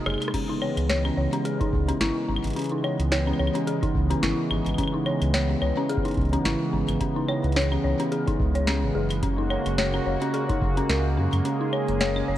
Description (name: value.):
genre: IDM.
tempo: 108 BPM.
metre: 4/4.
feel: swing 56% on 16ths.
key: C# dorian.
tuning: A4 = 440 Hz.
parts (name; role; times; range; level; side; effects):
warm analog pad; sustained chords; 0.0-12.4 s; B#2 to G#4; -27 LUFS; right 1 dB; chorus.
dark detuned synth bell; arpeggios; 0.1-12.4 s; C#4 to C#5; -28 LUFS; left 2 dB; chorus, tape echo.
round analog bass; bass; 0.1-12.4 s; F#1 to F#2; -26 LUFS; equal; none.
booming analog drum machine; drums; 0.1-12.3 s; claves, crash cymbal, hi-hat, rim click, snare drum; -31 LUFS; equal; none.
electronic kick drum; drums; 0.3-10.7 s; none; -28 LUFS; equal; none.
room: moderate lush hall reverb, RT60 3.0 s.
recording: worn, warbling old tape, cassette tape, warbly pitch drift.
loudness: -22 LUFS.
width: side -13 dB against mid.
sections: 0.0-12.4 A section.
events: break 0.0-0.3; drum fill 0.0-0.3.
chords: 0.3 C#m7; 9.2 F#add9.